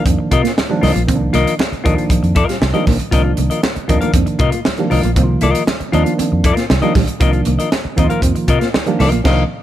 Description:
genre	funk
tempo	118 BPM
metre	4/4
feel	straight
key	C minor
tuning	A4 = 440 Hz
part	clean electric guitar	accompaniment	0.0-9.4 s	F4 to F5	-20 LUFS	left 6 dB	none
part	tine electric piano	stabs	0.0-9.4 s	D3 to F4	-20 LUFS	right 2 dB	overdrive
part	mellow electric guitar	riff	0.1-9.2 s	F3 to C4	-23 LUFS	right 4 dB	ensemble chorus
part	vintage muted fingered electric bass	bass	0.1-9.4 s	Bb1 to C3	-17 LUFS	equal	none
part	crisp fusion drum kit	drums	0.1-9.4 s	crash cymbal, hi-hat, kick drum, snare drum	-18 LUFS	equal	none
part	congas	percussion	0.1-9.1 s	none	-27 LUFS	right 5 dB	none
room	little or no reverb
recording	none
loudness	-13 LUFS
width	side -12 dB against mid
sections	0.0-9.6 A section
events	band accent 9.3-9.6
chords	0.0 Cm11

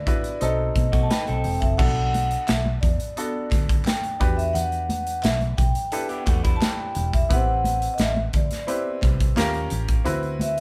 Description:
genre	lush 1970s-style soul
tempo	87 BPM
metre	4/4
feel	straight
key	unclear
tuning	A4 = 441 Hz
part	vibraphone with soft mallets	melody	0.0-10.6 s	D5 to A5	-29 LUFS	equal	none
part	bright baby grand piano	accompaniment	0.0-10.6 s	F#3 to B4	-33 LUFS	equal	none
part	vintage muted fingered electric bass	bass	0.0-10.6 s	E1 to B2	-28 LUFS	equal	none
part	modern studio drum kit	drums	0.1-10.6 s	crash cymbal, hi-hat, kick drum, snare drum	-26 LUFS	equal	none
part	congas	percussion	0.1-10.6 s	none	-36 LUFS	equal	none
part	electric guitar through a small old amp	riff	0.9-1.8, 5.9-7.3 s	G3 to B4	-35 LUFS	equal	none
part	group handclap	percussion	2.5-9.5 s	none	-43 LUFS	equal	none
room	light reverb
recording	band playing live in one room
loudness	-23 LUFS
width	mono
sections	0.0-1.8 A section; 1.8-10.6 B section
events	none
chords	0.4 B7b9; 1.8 Bm7; 4.2 Em9; 7.3 Am7; 9.4 D#9; 10.1 D13

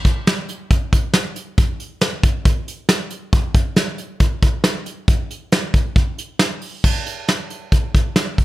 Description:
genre	indie pop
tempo	137 BPM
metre	4/4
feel	straight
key	none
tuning	none
part	soft brush drum kit	drums	0.0-8.4 s	crash cymbal, hi-hat, kick drum, snare drum	-16 LUFS	equal	none
room	light reverb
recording	none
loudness	-17 LUFS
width	side -17 dB against mid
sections	0.0-6.8 A section; 6.8-8.4 B section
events	none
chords	none

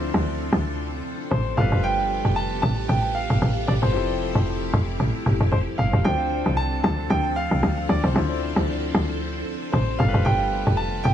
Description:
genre	amapiano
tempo	114 BPM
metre	4/4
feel	swing 55% on 16ths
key	D dorian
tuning	A4 = 439 Hz
part	clear concert grand piano	melody	0.0-11.1 s	C5 to A5	-28 LUFS	right 1 dB	analog delay
part	warm concert grand piano	accompaniment	0.0-11.1 s	D3 to C5	-31 LUFS	left 4 dB	analog delay
part	string machine, full ensemble	sustained chords	0.0-11.1 s	F3 to A4	-30 LUFS	equal	phaser, ensemble chorus
part	tight log drum bass	bass	0.0-11.1 s	F1 to D2	-22 LUFS	equal	none
room	little or no reverb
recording	echo-heavy mix, small room ambience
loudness	-20 LUFS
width	side -10 dB against mid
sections	0.0-11.1 A section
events	none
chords	0.0 Dm9; 1.6 G9; 3.9 Fmaj9; 6.0 Dm9; 10.0 G9

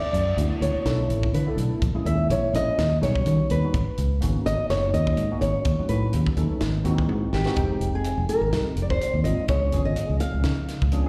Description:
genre	electric jazz fusion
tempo	125 BPM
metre	4/4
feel	swing 56% on 16ths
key	unclear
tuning	A4 = 441 Hz
part	nylon-string guitar	melody	0.0-11.1 s	G4 to F5	-29 LUFS	equal	slapback echo
part	fingered electric bass	bass	0.0-11.0 s	F1 to D#3	-26 LUFS	equal	none
part	crisp fusion drum kit	drums	0.1-11.0 s	hi-hat, kick drum, snare drum, toms	-32 LUFS	equal	none
part	tine electric piano	accompaniment	0.4-11.1 s	D3 to G5	-32 LUFS	equal	ensemble chorus, slapback echo
room	small room ambience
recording	live gig heard through the venue's PA, recital hall reverb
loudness	-24 LUFS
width	mono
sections	0.0-7.6 A section; 7.6-11.1 B section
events	nylon-string guitar solo 0.0-7.6; drum fill 7.1-7.6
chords	0.0 D6; 1.8 A#m7b5; 2.8 D#7alt; 3.7 G#m11; 5.6 D#m7b5; 6.6 G#7b13; 7.6 Fm9; 9.5 Db7b9

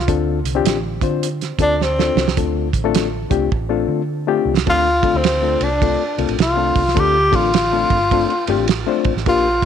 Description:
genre	uptempo 1960s-style soul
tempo	105 BPM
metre	4/4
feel	swing 63% on 8ths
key	D minor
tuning	A4 = 441 Hz
part	breathy tenor saxophone	melody	0.0-9.7 s	C4 to G4	-18 LUFS	left 1 dB	slapback echo
part	vintage muted fingered electric bass	bass	0.0-9.6 s	G1 to D3	-23 LUFS	right 1 dB	none
part	reed electric piano	accompaniment	0.1-9.7 s	Bb2 to C5	-21 LUFS	left 10 dB	none
part	cloth-damped thuddy drum kit	drums	0.1-9.7 s	hi-hat, kick drum, ride cymbal, snare drum	-21 LUFS	right 6 dB	none
room	light reverb, studio ambience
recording	1960s-style stereo with parts hard left and right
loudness	-15 LUFS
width	side -8 dB against mid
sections	0.0-2.4 A section; 2.4-4.7 B section; 4.7-9.7 C section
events	tenor saxophone solo 0.0-2.4; drum fill 1.8-2.4, 3.5-4.7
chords	0.1 Dm7

